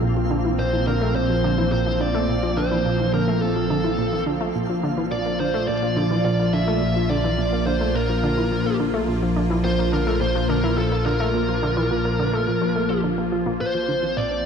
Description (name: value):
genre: ambient, sequencer-driven space music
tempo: 106 BPM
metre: 4/4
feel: straight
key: Bb lydian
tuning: A4 = 439 Hz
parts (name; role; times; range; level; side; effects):
- evolving wavetable pad; sustained chords; 0.0-14.5 s; F3 to F4; -25 LUFS; right 1 dB; ensemble chorus, built-in reverb
- analog pluck; riff; 0.0-14.4 s; Bb2 to Bb3; -26 LUFS; equal; chorus, analog delay
- fat analog bass; bass; 0.0-14.5 s; Bb1; -26 LUFS; left 1 dB; none
- twinkling granular texture; texture; 0.0-13.6 s; F4; -33 LUFS; right 1 dB; built-in reverb
- bluesy overdriven lead guitar; melody; 0.6-14.5 s; A4 to E5; -25 LUFS; equal; distortion, analog delay
room: moderate plate reverb, RT60 2.7 s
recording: dark, warm production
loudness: -19 LUFS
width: side -7 dB against mid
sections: 0.0-13.6 A section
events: none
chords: 0.0 Bbsus2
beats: | 0.02 0.59 1.16 1.72 | 2.29 2.85 3.42 3.98 | 4.55 5.12 5.68 6.25 | 6.82 7.38 7.95 8.51 | 9.08 9.65 10.21 10.78 | 11.34 11.91 12.48 13.04 | 13.61 14.17